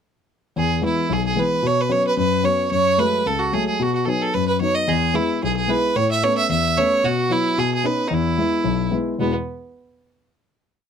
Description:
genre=celtic folk, Celtic reel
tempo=222 BPM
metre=4/4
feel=swing 54% on 8ths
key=E major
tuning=A4 = 440 Hz
part: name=rich fiddle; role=melody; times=0.6-9.3 s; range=B3 to E5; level=-20 LUFS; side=right 3 dB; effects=none
part: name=warm concert grand piano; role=accompaniment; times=0.6-9.3 s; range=B1 to E4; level=-21 LUFS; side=left 4 dB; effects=none
room=light reverb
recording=close, detailed microphones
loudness=-18 LUFS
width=side -7 dB against mid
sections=0.6-9.2 A section; 9.2-10.3 final chord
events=none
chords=0.6 E; 1.6 Bsus2; 2.7 F#madd9; 3.8 B; 4.9 E; 6.0 Aadd9; 7.0 Bsus4; 7.6 Badd9; 8.1 E

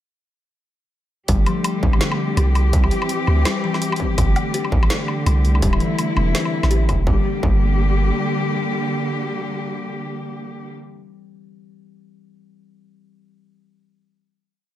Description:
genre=half-time drum and bass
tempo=166 BPM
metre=4/4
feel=swing 59% on 16ths, half-time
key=G dorian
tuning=A4 = 440 Hz
part: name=warm studio cello section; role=sustained chords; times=1.3-10.7 s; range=D3 to G4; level=-24 LUFS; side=equal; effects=sidechain pumping
part: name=kalimba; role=arpeggios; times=1.3-7.5 s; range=E3 to G4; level=-26 LUFS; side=left 4 dB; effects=vintage 12-bit sampler grit, diffuse ambient delay
part: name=long sustained 808-style bass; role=bass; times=1.3-8.1 s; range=D1 to D2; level=-17 LUFS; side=equal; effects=tube saturation
part: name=drum and bass drum kit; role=drums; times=1.3-7.0 s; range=hi-hat, snare drum, woodblock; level=-26 LUFS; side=left 1 dB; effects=overdrive
part: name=electronic kick drum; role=drums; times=1.3-7.6 s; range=none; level=-20 LUFS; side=equal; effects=distortion
room=light reverb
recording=none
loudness=-17 LUFS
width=side -13 dB against mid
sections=1.3-7.1 drop; 7.1-10.0 final chord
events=drop 1.3-7.1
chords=1.3 Gsus2; 2.7 C; 4.2 Gsus2; 5.6 Dsus2; 7.1 Gm

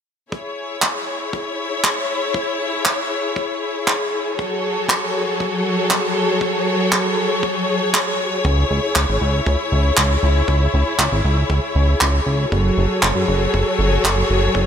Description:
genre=italo disco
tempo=118 BPM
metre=4/4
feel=straight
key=unclear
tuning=A4 = 444 Hz
part: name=clear symphonic string section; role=sustained chords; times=0.3-14.7 s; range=F#3 to C#5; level=-20 LUFS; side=left 1 dB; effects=none
part: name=kick drum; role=drums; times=0.3-14.7 s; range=none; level=-28 LUFS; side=equal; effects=high-pass filter on kick, small room reverb, high-pass filter on snare, high-pass filter on room
part: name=handclaps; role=drums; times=0.8-14.1 s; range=none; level=-21 LUFS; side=right 1 dB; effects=small room reverb
part: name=chorused synth bass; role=bass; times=8.4-14.7 s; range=F#1 to F#2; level=-18 LUFS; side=equal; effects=none
room=moderate lush hall reverb, RT60 2.5 s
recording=bright 1980s-style digital production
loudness=-16 LUFS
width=side -8 dB against mid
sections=0.3-14.7 A section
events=none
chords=0.3 C#m; 4.4 F#madd9; 8.4 C#m; 12.5 F#madd9

